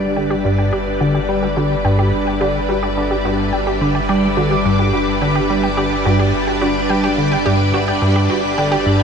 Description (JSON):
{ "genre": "ambient, sequencer-driven space music", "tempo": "107 BPM", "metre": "4/4", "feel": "straight", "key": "G major", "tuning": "A4 = 440 Hz", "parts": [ { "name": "string machine, full ensemble", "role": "sustained chords", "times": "0.0-9.0 s", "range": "G3 to D5", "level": "-18 LUFS", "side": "equal", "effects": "ensemble chorus" }, { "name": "plucky analog bass", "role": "riff", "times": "0.0-9.0 s", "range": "G2 to G3", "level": "-18 LUFS", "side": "equal", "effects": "analog chorus, ping-pong delay" }, { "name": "warm sub bass", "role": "bass", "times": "0.0-9.0 s", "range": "G1", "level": "-28 LUFS", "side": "equal", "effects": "none" }, { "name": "wind-like tuned noise texture", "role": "texture", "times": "0.0-9.0 s", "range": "E5", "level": "-34 LUFS", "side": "right 1 dB", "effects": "none" }, { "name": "wide unison pluck", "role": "arpeggios", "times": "0.2-9.0 s", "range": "F#4 to G5", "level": "-23 LUFS", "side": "right 1 dB", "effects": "auto-pan, cassette tape, ping-pong delay" } ], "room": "wet shimmer reverb, RT60 8.4 s", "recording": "cassette tape", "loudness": "-14 LUFS", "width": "side -6 dB against mid", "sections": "0.0-9.0 A section", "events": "none", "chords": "0.0 G" }